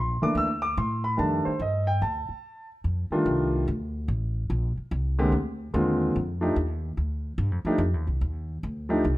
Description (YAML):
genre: jazz, big band swing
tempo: 145 BPM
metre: 4/4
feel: swing 65% on 8ths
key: F major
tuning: A4 = 445 Hz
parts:
  - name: warm grand piano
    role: accompaniment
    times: 0.0-9.0 s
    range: D3 to E6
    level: -25 LUFS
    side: equal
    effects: none
  - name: upright bass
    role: bass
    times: 0.0-9.2 s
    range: A1 to A2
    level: -28 LUFS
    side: equal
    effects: none
room: light reverb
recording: none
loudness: -24 LUFS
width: side -17 dB against mid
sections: 0.0-2.8 A section; 2.8-9.2 B section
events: grand piano solo 0.0-2.8; break 2.4-2.8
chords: 0.0 C13; 1.2 F13; 4.5 Bb9; 6.1 F13